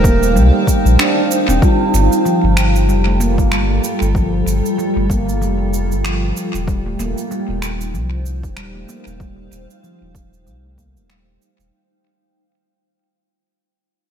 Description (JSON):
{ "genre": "organic downtempo", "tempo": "95 BPM", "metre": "4/4", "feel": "swing 57% on 16ths", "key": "unclear", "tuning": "A4 = 440 Hz", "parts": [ { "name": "clear clarinet", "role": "melody", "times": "0.0-1.0 s", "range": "Bb4", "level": "-24 LUFS", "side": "right 3 dB", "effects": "analog delay" }, { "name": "granular cloud pad", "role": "sustained chords", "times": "0.0-11.7 s", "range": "G3 to G5", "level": "-22 LUFS", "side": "equal", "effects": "built-in reverb, sidechain pumping" }, { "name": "handpan", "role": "arpeggios", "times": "0.0-11.2 s", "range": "F3 to D4", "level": "-20 LUFS", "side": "right 2 dB", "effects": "low-pass filter, tape echo" }, { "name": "warm sub bass", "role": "bass", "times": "0.0-11.7 s", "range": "Eb1 to C2", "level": "-16 LUFS", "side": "equal", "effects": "sidechain pumping" }, { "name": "electronic cabasa and finger snaps", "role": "drums", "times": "0.0-11.7 s", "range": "none", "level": "-23 LUFS", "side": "right 2 dB", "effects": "tape echo" }, { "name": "electronic kick drum", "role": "drums", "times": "0.0-10.9 s", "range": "none", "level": "-16 LUFS", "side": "equal", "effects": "none" }, { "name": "bronze singing bowl", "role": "texture", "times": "1.6-11.7 s", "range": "F4", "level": "-25 LUFS", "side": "equal", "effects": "none" } ], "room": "moderate echo chamber reverb, RT60 2.1 s", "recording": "echo-heavy mix", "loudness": "-14 LUFS", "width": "side -8 dB against mid", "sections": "0.0-1.6 A section; 1.6-11.7 B section", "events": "fade-out 1.6-11.7; filter sweep on handpan 1.6-11.7", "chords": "0.0 Eb6" }